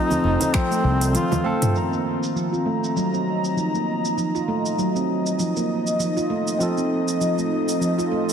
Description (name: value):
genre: organic downtempo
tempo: 99 BPM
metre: 4/4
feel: swing 56% on 16ths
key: unclear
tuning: A4 = 441 Hz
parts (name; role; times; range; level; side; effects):
- warm duduk; melody; 0.0-1.6 s; C4 to F4; -26 LUFS; left 2 dB; ping-pong delay
- barky tine electric piano; accompaniment; 0.0-8.3 s; Eb3 to Bb5; -30 LUFS; right 2 dB; medium stereo tremolo, sidechain pumping, ping-pong delay
- airy breathy pad; sustained chords; 0.0-8.3 s; F3 to Bb5; -25 LUFS; equal; chorus, sidechain pumping
- handpan; arpeggios; 0.0-8.3 s; F3 to F4; -24 LUFS; right 1 dB; low-pass filter, ping-pong delay
- organic electronic drum kit; drums; 0.1-8.3 s; cabasa, finger snaps, hi-hat, toms; -29 LUFS; equal; overdrive, low-pass filter on hats, low-pass filter on perc, low-pass filter on snare, low-pass filter on toms, low-pass filter on room
- congas and bongos; percussion; 0.1-1.7 s; none; -28 LUFS; right 1 dB; none
- fretless electric bass; bass; 0.2-1.1 s; F1 to C2; -21 LUFS; left 1 dB; sidechain pumping
- electronic kick drum; drums; 0.5-0.7 s; none; -23 LUFS; left 1 dB; overdrive
room: wet lush hall reverb, RT60 2.0 s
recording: heavily compressed radio sound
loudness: -20 LUFS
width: side -7 dB against mid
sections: 0.0-1.8 A section; 1.8-8.3 B section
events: drum fill 1.1-1.8; filter sweep on drum 1.8-8.3; filter sweep on handpan 1.8-8.3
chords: 0.0 F7; 1.8 Eb5; 6.6 F7